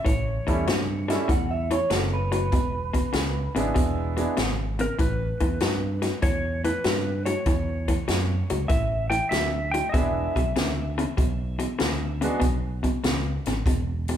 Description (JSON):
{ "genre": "electric blues shuffle", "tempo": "97 BPM", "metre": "4/4", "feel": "swing 68% on 8ths", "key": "unclear", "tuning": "A4 = 440 Hz", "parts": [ { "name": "clean lap steel guitar", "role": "melody", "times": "0.0-12.4 s", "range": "A#4 to G5", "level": "-30 LUFS", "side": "equal", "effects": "none" }, { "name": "electric guitar through a small old amp", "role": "riff", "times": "0.0-14.2 s", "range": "E2 to F#3", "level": "-29 LUFS", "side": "left 2 dB", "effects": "none" }, { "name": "fingered electric bass", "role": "bass", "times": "0.1-14.1 s", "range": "E1 to G2", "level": "-28 LUFS", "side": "equal", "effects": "none" }, { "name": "swinging big-band drum kit", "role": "drums", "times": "0.1-14.2 s", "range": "hi-hat, kick drum, snare drum", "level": "-27 LUFS", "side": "equal", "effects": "none" }, { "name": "bright upright piano", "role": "accompaniment", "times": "0.5-4.4, 9.9-12.4 s", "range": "G3 to F#4", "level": "-29 LUFS", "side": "right 2 dB", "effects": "none" }, { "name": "electric guitar through a small old amp", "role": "second line", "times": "1.1-3.5 s", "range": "A4 to F#5", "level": "-29 LUFS", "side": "right 2 dB", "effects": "none" } ], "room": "moderate large studio reverb, RT60 1.3 s", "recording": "band playing live in one room", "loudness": "-22 LUFS", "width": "side -10 dB against mid", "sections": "0.0-14.2 A section", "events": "none", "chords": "0.1 A7; 2.5 E7; 5.0 A7; 9.9 E7" }